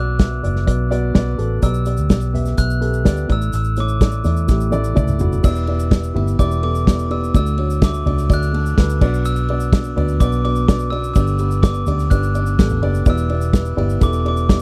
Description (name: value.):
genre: piano-driven pop.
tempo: 126 BPM.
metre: 4/4.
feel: straight.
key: unclear.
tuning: A4 = 436 Hz.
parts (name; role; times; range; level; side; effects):
glockenspiel with soft plastic mallets; melody; 0.0-14.6 s; D6 to F#6; -29 LUFS; equal; none.
dark upright piano; accompaniment; 0.0-14.6 s; G2 to E5; -26 LUFS; equal; none.
vintage muted fingered electric bass; bass; 0.0-14.6 s; E1 to E2; -22 LUFS; equal; none.
unplugged drum kit; drums; 0.2-14.6 s; crash cymbal, hi-hat, kick drum, ride cymbal, snare drum, toms; -18 LUFS; equal; none.
tube shaker; percussion; 1.6-14.6 s; none; -45 LUFS; equal; none.
room: little or no reverb.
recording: dry, close 1970s-style studio recording.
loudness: -18 LUFS.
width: mono.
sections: 0.0-5.4 A section; 5.4-14.6 B section.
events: drum fill 4.5-5.4.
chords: 0.0 Bm; 1.6 G/B; 3.3 Asus4; 5.4 Em7; 7.3 D; 9.0 Bm; 11.2 G; 13.1 Em7.